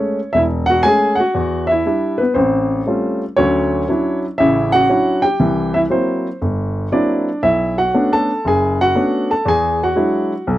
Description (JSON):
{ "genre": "solo jazz", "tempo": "118 BPM", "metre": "4/4", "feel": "swing 67% on 8ths", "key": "A major", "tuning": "A4 = 440 Hz", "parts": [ { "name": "warm baby grand piano", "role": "solo", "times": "0.0-10.6 s", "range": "E1 to A5", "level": "-14 LUFS", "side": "equal", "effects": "none" } ], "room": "light reverb", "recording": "dry, close 1970s-style studio recording", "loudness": "-14 LUFS", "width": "side -14 dB against mid", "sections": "0.0-10.6 A section", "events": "none", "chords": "0.0 Amaj7; 1.4 Em7; 2.4 A7alt; 3.4 Dmaj9; 5.4 C7#11; 7.4 Bm9; 9.5 E9", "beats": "0.34 0.84 | 1.35 1.86 2.36 2.87 | 3.38 3.88 4.39 4.90 | 5.41 5.91 6.42 6.93 | 7.43 7.94 8.45 8.96 | 9.46 9.97 10.48" }